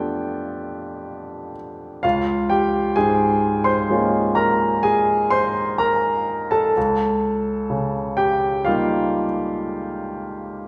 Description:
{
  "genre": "classical, impressionist solo piano",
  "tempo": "63 BPM",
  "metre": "5/4",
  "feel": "rubato",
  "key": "unclear",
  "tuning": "A4 = 440 Hz",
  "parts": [
    { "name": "clear baby grand piano", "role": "solo", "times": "0.0-10.7 s", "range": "Db2 to C6", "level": "-21 LUFS", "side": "equal", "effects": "none" }
  ],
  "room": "wet scoring stage reverb, RT60 1.5 s",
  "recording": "heard from further back in the room",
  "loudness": "-20 LUFS",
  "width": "mono",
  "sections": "0.0-10.7 A section",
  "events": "none",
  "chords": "0.0 G9/F; 2.0 Db6; 6.8 Eb9/Db"
}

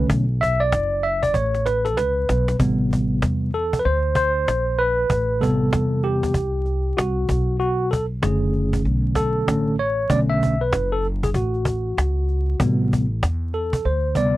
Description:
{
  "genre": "hip hop, jazz-hop",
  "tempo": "96 BPM",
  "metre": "4/4",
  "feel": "swing 62% on 16ths",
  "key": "A dorian",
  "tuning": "A4 = 440 Hz",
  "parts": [
    { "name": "tine electric piano", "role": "accompaniment", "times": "0.0-14.4 s", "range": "C3 to E5", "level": "-21 LUFS", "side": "equal", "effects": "medium stereo tremolo" },
    { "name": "upright bass", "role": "bass", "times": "0.0-14.4 s", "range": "F#1 to E2", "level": "-23 LUFS", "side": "equal", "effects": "none" },
    { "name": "cajon", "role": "drums", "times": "0.1-14.3 s", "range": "none", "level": "-24 LUFS", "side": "equal", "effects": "none" }
  ],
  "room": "little or no reverb",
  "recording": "dry, close 1970s-style studio recording, vinyl crackle",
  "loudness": "-19 LUFS",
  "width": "side -16 dB against mid",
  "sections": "0.0-2.6 A section; 2.6-14.4 A section",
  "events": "tine electric piano solo 0.0-2.6, 2.6-14.4; drum fill 1.4-2.6",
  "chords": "0.0 Bm9; 2.6 Am9; 7.3 Bm9; 12.6 Am9"
}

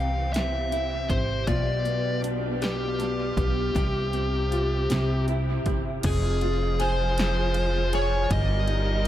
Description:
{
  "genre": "six-eight pop ballad",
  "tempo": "53 BPM (dotted quarters)",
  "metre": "6/8",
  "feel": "straight",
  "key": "F minor",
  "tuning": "A4 = 441 Hz",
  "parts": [
    { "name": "fuzz lead guitar", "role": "melody", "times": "0.0-9.1 s", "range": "G4 to F5", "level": "-29 LUFS", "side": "left 1 dB", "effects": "distortion, dub echo" },
    { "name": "nylon-string guitar", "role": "accompaniment", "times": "0.0-9.1 s", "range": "F2 to Ab4", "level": "-30 LUFS", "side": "left 1 dB", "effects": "double-tracked left and right, dub echo" },
    { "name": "warm studio string section", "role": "sustained chords", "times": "0.0-9.1 s", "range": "C3 to Bb4", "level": "-34 LUFS", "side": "right 2 dB", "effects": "none" },
    { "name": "upright bass", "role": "bass", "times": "0.0-9.1 s", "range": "F1 to C2", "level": "-27 LUFS", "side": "equal", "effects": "none" },
    { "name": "punchy analog drum machine", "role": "drums", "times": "0.3-9.1 s", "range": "crash cymbal, hi-hat, kick drum, ride cymbal, snare drum", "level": "-31 LUFS", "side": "equal", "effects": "overdrive" }
  ],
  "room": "light reverb, studio reverb",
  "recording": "echo-heavy mix",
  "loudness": "-23 LUFS",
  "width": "side -12 dB against mid",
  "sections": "0.0-6.0 A section; 6.0-9.1 B section",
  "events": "none",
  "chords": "0.0 C; 1.5 G7/B; 3.8 Csus4; 4.9 C; 6.0 Fm; 8.3 Ebadd9/G"
}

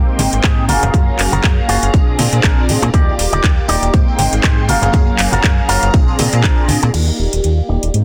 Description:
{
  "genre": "filtered disco house",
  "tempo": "120 BPM",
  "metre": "4/4",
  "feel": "swing 56% on 16ths",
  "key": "Eb major",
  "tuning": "A4 = 443 Hz",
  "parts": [
    { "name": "mellow synth brass", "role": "accompaniment", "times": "0.0-8.0 s", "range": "Bb3 to G5", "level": "-22 LUFS", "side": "equal", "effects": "chorus, phaser, cassette tape, sidechain pumping, low-pass filter" },
    { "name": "phased string machine", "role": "sustained chords", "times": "0.0-8.0 s", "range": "Gb3 to D6", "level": "-29 LUFS", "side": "equal", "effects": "ensemble chorus, phaser, sidechain pumping, low-pass filter" },
    { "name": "slap-like FM bass", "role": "bass", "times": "0.0-8.0 s", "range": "Eb1 to Bb2", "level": "-20 LUFS", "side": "equal", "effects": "tube saturation, sidechain pumping, low-pass filter" },
    { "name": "tambourine and congas", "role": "percussion", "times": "0.1-6.9 s", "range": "none", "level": "-26 LUFS", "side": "equal", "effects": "sidechain pumping on perc, low-pass filter on perc" },
    { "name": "electric guitar with an envelope filter", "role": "riff", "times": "0.2-7.9 s", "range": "D4 to Eb5", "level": "-22 LUFS", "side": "equal", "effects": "sidechain pumping, low-pass filter" },
    { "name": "house drum kit", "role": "drums", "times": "0.2-8.0 s", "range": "crash cymbal, handclaps, hi-hat", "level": "-22 LUFS", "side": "equal", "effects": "none" },
    { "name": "electronic kick drum", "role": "drums", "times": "0.4-6.6 s", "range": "none", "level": "-15 LUFS", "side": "equal", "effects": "none" }
  ],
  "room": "digital ambience",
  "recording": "dense, heavily limited modern master",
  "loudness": "-14 LUFS",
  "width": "mono",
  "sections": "0.0-6.9 A section; 6.9-8.0 B section",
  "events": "filter sweep 6.9-8.0",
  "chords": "0.0 Abmaj7; 0.7 Gbmaj7; 1.9 Bb7; 2.9 Ebmaj7; 3.9 Abmaj7; 4.7 Gbmaj7; 5.9 Bb7; 6.9 Ebmaj7"
}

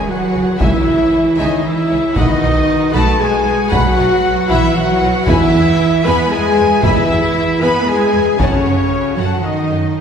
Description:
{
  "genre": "cinematic, epic orchestral film score",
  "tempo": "116 BPM",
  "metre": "3/4",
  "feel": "straight",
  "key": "unclear",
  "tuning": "A4 = 440 Hz",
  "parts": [
    { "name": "clear symphonic violin section", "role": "melody", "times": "0.0-10.0 s", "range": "C#5 to B5", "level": "-25 LUFS", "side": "left 3 dB", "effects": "none" },
    { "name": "clear symphonic violin section", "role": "second line", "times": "0.0-9.8 s", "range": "G#4 to B5", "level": "-25 LUFS", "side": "left 2 dB", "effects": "none" },
    { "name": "rich symphonic viola section", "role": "accompaniment", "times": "0.0-9.9 s", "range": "C#4 to B4", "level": "-23 LUFS", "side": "equal", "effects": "none" },
    { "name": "mellow French horn section", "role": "sustained chords", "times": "0.0-9.9 s", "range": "C#4 to B4", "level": "-17 LUFS", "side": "left 1 dB", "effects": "none" },
    { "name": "mellow woodwind section", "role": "sustained chords", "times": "0.0-10.0 s", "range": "B3 to F#5", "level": "-26 LUFS", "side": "equal", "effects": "none" },
    { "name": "warm trumpet section", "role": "stabs", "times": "0.0-9.9 s", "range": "C#5 to B5", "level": "-20 LUFS", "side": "left 1 dB", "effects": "none" },
    { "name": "rich symphonic cello section", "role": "bass", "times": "0.0-10.0 s", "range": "C#3 to B3", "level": "-19 LUFS", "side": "right 2 dB", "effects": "none" },
    { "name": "sub drop", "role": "sound effects", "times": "0.0-0.6 s", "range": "none", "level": "-36 LUFS", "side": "equal", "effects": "none" },
    { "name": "rich symphonic double bass section", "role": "bass", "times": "0.3-9.8 s", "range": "B1 to F#2", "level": "-20 LUFS", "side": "right 2 dB", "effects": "none" },
    { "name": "taiko ensemble", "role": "drums", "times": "0.6-8.9 s", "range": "none", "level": "-20 LUFS", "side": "equal", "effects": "none" }
  ],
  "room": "wet scoring stage reverb, RT60 1.9 s",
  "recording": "heard from further back in the room",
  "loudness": "-12 LUFS",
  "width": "side -7 dB against mid",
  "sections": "0.0-10.0 A section",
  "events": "impact 0.0-0.6",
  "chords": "0.0 C#m; 2.2 B; 5.3 E; 8.4 F#m"
}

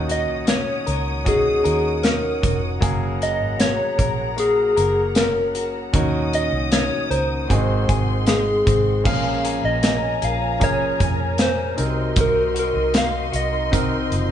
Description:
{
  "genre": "pop ballad",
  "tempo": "77 BPM",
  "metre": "4/4",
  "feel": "straight",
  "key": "Bb minor",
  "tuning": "A4 = 439 Hz",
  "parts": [
    { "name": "clear concert grand piano", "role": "accompaniment", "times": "0.0-14.3 s", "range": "Ab2 to Bb4", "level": "-28 LUFS", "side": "right 1 dB", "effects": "none" },
    { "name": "warm studio string section", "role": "sustained chords", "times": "0.0-14.3 s", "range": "Db4 to Eb6", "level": "-30 LUFS", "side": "left 2 dB", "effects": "none" },
    { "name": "direct-recorded clean electric guitar", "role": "arpeggios", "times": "0.0-14.3 s", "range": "Ab2 to Bb4", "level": "-30 LUFS", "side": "left 7 dB", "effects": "spring reverb" },
    { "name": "vintage muted fingered electric bass", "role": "bass", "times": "0.0-14.3 s", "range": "F1 to F2", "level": "-25 LUFS", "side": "right 1 dB", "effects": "none" },
    { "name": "soft struck synth lead", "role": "melody", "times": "0.1-14.1 s", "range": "Ab4 to F5", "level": "-22 LUFS", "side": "left 1 dB", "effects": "chorus, tremolo" },
    { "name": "modern studio drum kit", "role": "drums", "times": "0.1-14.3 s", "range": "crash cymbal, hi-hat, kick drum, snare drum", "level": "-22 LUFS", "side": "right 1 dB", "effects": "none" },
    { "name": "mellow French horn section", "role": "second line", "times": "9.0-14.3 s", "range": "Db3 to Gb4", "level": "-32 LUFS", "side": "right 8 dB", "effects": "none" }
  ],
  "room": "moderate stone room reverb, RT60 1.4 s",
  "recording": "band playing live in one room, nothing above 10.4 kHz",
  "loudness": "-18 LUFS",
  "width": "side -10 dB against mid",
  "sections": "0.0-9.1 A section; 9.1-14.3 B section",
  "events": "none",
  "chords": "0.0 Ebm7; 2.8 Gbadd9; 5.9 Ebm7; 7.5 Ab7; 9.1 Bbm7; 11.8 Cm7b5"
}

